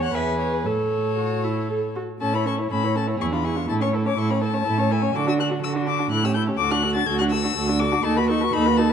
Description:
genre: quick classical-period movement for string quartet.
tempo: 123 BPM.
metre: 3/4.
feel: rubato.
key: A major.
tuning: A4 = 435 Hz.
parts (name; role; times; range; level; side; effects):
rich violin; melody; 0.0-8.9 s; B4 to A6; -26 LUFS; left 9 dB; none.
dark violin; second line; 0.0-8.9 s; F4 to C#5; -28 LUFS; left 4 dB; none.
warm viola; accompaniment; 0.0-8.9 s; C#4 to C#5; -26 LUFS; right 1 dB; none.
rich cello; bass; 0.0-8.9 s; D2 to D3; -24 LUFS; right 4 dB; none.
room: moderate recital hall reverb, RT60 1.6 s.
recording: dark, warm production.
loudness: -20 LUFS.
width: side -8 dB against mid.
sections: 0.0-2.2 A section; 2.2-8.9 B section.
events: none.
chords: 0.1 E; 0.7 A; 3.2 E7b9; 3.7 A; 5.1 D; 6.1 A7; 6.6 D; 8.0 B7/D#.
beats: 0.15 | 0.66 1.18 1.70 | 2.21 2.71 3.20 | 3.69 4.18 4.66 | 5.14 5.62 6.11 | 6.59 7.08 7.56 | 8.05 8.54.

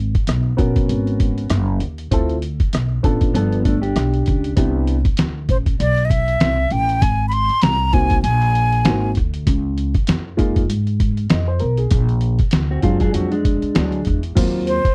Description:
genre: hip hop, jazz-hop.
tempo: 98 BPM.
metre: 4/4.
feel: swing 57% on 16ths.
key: unclear.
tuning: A4 = 441 Hz.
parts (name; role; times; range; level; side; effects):
upright bass; bass; 0.0-14.9 s; Gb1 to Ab2; -22 LUFS; equal; none.
trip hop sampler-style drum kit; drums; 0.1-14.9 s; crash cymbal, hi-hat, kick drum, rim click, snare drum; -21 LUFS; equal; none.
dark upright piano; accompaniment; 0.6-14.7 s; Gb3 to Eb5; -24 LUFS; equal; none.
mellow electric guitar; second line; 3.3-4.5, 12.7-14.2 s; F3 to Ab4; -25 LUFS; equal; warbly pitch drift.
breathy silver concert flute; melody; 5.5-9.1, 14.7-14.9 s; C5 to C6; -21 LUFS; equal; none.
room: little or no reverb.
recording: dry, close 1970s-style studio recording.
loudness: -18 LUFS.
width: mono.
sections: 0.0-14.4 A section.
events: none.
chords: 0.0 Abm11; 2.1 Dm7; 3.3 G7; 4.6 Cmaj9; 7.0 Ab7; 9.5 Db69; 11.9 Bb7b13; 14.4 Ebm69.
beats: 0.28 0.89 1.51 | 2.12 2.73 3.34 3.96 | 4.57 5.18 5.79 6.40 | 7.02 7.63 8.24 8.85 | 9.46 10.08 10.69 11.30 | 11.91 12.53 13.14 13.75 | 14.36.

